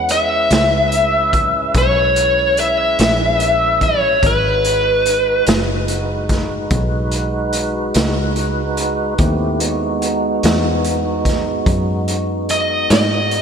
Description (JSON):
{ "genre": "slow blues", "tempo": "48 BPM (dotted quarters)", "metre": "12/8", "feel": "straight", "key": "G# minor", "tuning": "A4 = 438 Hz", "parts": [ { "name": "biting lead guitar", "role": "melody", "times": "0.0-13.4 s", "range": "B4 to F#5", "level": "-15 LUFS", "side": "left 1 dB", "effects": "overdrive, slapback echo" }, { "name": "tonewheel organ", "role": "sustained chords", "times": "0.0-13.4 s", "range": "G#3 to B4", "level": "-22 LUFS", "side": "right 1 dB", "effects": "slow rotary speaker, overdrive, chorus vibrato" }, { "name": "fingered electric bass", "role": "bass", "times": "0.0-13.4 s", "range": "F#1 to G#2", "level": "-22 LUFS", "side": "equal", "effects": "none" }, { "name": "raw garage drum kit", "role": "drums", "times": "0.1-13.4 s", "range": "hi-hat, kick drum, snare drum", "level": "-19 LUFS", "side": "equal", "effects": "none" } ], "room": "moderate lush hall reverb, RT60 2.8 s", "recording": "big arena sound", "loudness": "-14 LUFS", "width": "side -7 dB against mid", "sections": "0.0-13.4 A section", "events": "none", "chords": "0.0 C#m7; 4.2 G#m7" }